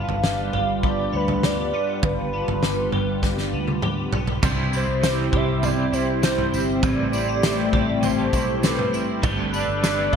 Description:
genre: dream pop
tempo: 100 BPM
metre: 4/4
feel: straight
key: C major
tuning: A4 = 440 Hz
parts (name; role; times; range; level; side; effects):
- warm velvety synth lead; melody; 0.0-10.2 s; B4 to F5; -27 LUFS; equal; chorus, digital delay
- phased analog pad; sustained chords; 0.0-10.2 s; C3 to B4; -26 LUFS; equal; phaser, chorus
- twelve-string electric guitar; arpeggios; 0.0-10.2 s; G2 to A4; -29 LUFS; left 3 dB; ensemble chorus, digital delay
- vintage muted fingered electric bass; bass; 0.0-10.2 s; G1 to D2; -29 LUFS; equal; none
- loose indie drum kit; drums; 0.1-10.2 s; crash cymbal, kick drum, snare drum, tambourine, toms; -24 LUFS; equal; none
- electric guitar at the edge of break-up; accompaniment; 4.4-10.2 s; A2 to B4; -28 LUFS; right 4 dB; tremolo, analog chorus
room: moderate plate reverb, RT60 1.6 s, small room reverb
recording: bright 1980s-style digital production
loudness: -20 LUFS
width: side -7 dB against mid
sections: 0.0-4.4 A section; 4.4-10.2 B section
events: drum fill 3.2-4.4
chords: 0.0 G7; 4.4 C; 6.8 Am7; 9.2 Gadd9

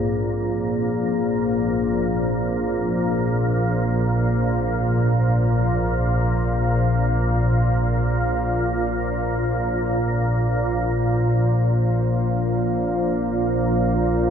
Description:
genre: dark ambient drone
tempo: free time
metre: none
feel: none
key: unclear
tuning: A4 = 441 Hz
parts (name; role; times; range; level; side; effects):
- dark analog pad; sustained chords; 0.0-14.3 s; Bb3 to F5; -26 LUFS; equal; chorus
- bronze singing bowl; arpeggios; 0.0-5.4 s; Ab2 to Ab4; -29 LUFS; left 2 dB; tape echo
- organ-like drone; drone; 0.0-14.3 s; Bb1 to Bb2; -20 LUFS; equal; ensemble chorus, built-in reverb
- bubbling stepped-filter texture; texture; 10.9-14.3 s; C5; -43 LUFS; right 7 dB; none
room: wet huge ambient reverb, RT60 7.3 s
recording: none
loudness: -19 LUFS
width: side -8 dB against mid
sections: 0.0-10.9 A section; 10.9-14.3 A section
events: fade-in on synth drone 0.0-10.9; fade-out on analog synth pad 0.0-10.9; filter sweep on synth drone 10.9-14.3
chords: 0.0 Bbsus2

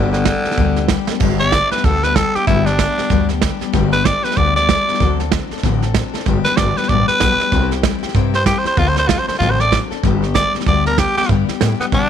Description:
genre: rockabilly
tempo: 190 BPM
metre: 4/4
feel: swing 61% on 8ths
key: G major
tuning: A4 = 440 Hz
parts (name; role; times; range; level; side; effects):
- growling tenor saxophone; melody; 0.0-12.1 s; D3 to D5; -18 LUFS; right 1 dB; none
- picked steel-string acoustic guitar; accompaniment; 0.0-12.1 s; G2 to A4; -21 LUFS; left 15 dB; none
- upright bass; bass; 0.0-12.1 s; G1 to B2; -19 LUFS; equal; none
- soft brush drum kit; drums; 0.1-12.0 s; crash cymbal, hi-hat, kick drum, snare drum; -20 LUFS; right 4 dB; none
room: small room ambience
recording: 1960s-style stereo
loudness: -14 LUFS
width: side -9 dB against mid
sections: 0.0-1.2 A section; 1.2-11.3 A section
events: tenor saxophone solo 0.0-11.3; drum fill 1.1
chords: 0.0 G; 5.0 D7; 6.3 G; 7.5 C; 8.8 D7; 10.0 G

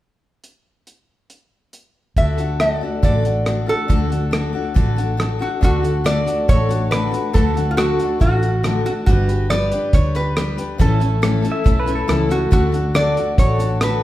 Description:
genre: honky-tonk and classic country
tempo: 139 BPM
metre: 4/4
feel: straight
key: D major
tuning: A4 = 440 Hz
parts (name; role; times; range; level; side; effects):
- cloth-damped thuddy drum kit; drums; 0.4-13.9 s; hi-hat, kick drum, rim click; -18 LUFS; right 1 dB; none
- lap resonator guitar; melody; 2.2-14.0 s; F4 to E5; -22 LUFS; right 1 dB; none
- picked steel-string acoustic guitar; accompaniment; 2.2-14.0 s; A2 to B4; -22 LUFS; left 4 dB; none
- vintage muted fingered electric bass; bass; 2.2-14.0 s; G1 to D2; -21 LUFS; equal; none
- pedal steel guitar; second line; 11.5-12.2 s; A4 to E5; -26 LUFS; right 1 dB; none
room: moderate recital hall reverb, RT60 1.5 s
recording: recorded in a church or concert hall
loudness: -15 LUFS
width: side -14 dB against mid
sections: 0.4-2.2 A section; 2.2-5.6 B section; 5.6-14.0 C section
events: none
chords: 0.4 N.C.; 2.2 D; 9.1 G; 10.8 A; 12.5 D

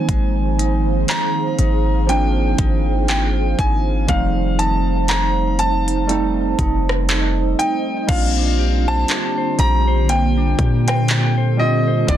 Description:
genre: contemporary R&B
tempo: 60 BPM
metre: 4/4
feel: swing 58% on 16ths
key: Bb major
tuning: A4 = 444 Hz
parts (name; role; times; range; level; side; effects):
- clear baby grand piano; melody; 0.0-12.2 s; D5 to Bb5; -23 LUFS; equal; tape echo
- warm analog keys; accompaniment; 0.0-12.2 s; D3 to F4; -24 LUFS; right 5 dB; chorus
- ethereal airy pad; sustained chords; 0.0-12.2 s; D3 to F5; -25 LUFS; right 2 dB; ensemble chorus, built-in reverb
- mellow electric guitar; arpeggios; 0.0-12.2 s; Eb3 to C5; -28 LUFS; left 8 dB; tape echo
- warm 808-style bass; bass; 0.1-12.2 s; Eb1 to Bb2; -19 LUFS; equal; none
- trap drum kit; drums; 0.1-12.2 s; crash cymbal, handclaps, hi-hat, kick drum, rim click; -21 LUFS; equal; overdrive, vintage 12-bit sampler grit
room: light reverb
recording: dense, heavily limited modern master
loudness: -15 LUFS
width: side -11 dB against mid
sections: 0.0-8.1 A section; 8.1-12.2 B section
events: none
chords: 0.0 Ab6; 4.1 F7; 8.1 Bb69

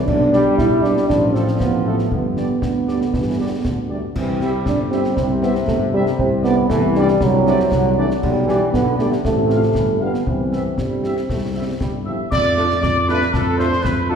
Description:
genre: military-style march for wind band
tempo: 118 BPM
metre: 2/4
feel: straight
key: C major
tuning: A4 = 440 Hz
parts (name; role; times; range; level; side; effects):
- bright trombone section; sustained chords; 0.0-14.2 s; C3 to D4; -25 LUFS; right 1 dB; none
- warm euphonium; second line; 0.1-12.0 s; F#3 to E4; -19 LUFS; right 2 dB; none
- dark tuba; bass; 0.1-14.2 s; G1 to F2; -21 LUFS; equal; none
- clash cymbals, concert bass drum and concert snare drum; drums; 0.1-14.0 s; none; -25 LUFS; left 1 dB; none
- warm trumpet section; melody; 0.3-14.2 s; A4 to F5; -26 LUFS; right 1 dB; none
- dark French horn section; accompaniment; 0.3-14.2 s; G3 to G4; -28 LUFS; left 1 dB; none
- wooden piccolo; second line; 12.1-14.2 s; A5 to E6; -24 LUFS; left 2 dB; none
room: wet scoring stage reverb, RT60 2.0 s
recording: heard from further back in the room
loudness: -16 LUFS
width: side -7 dB against mid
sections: 0.0-12.3 A section; 12.3-14.2 B section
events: none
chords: 0.1 G/B; 1.1 F/A; 2.1 G; 4.2 C5; 6.2 D7/C; 8.2 G/B; 9.3 F/A; 9.8 G; 10.3 C; 12.3 Dm/F

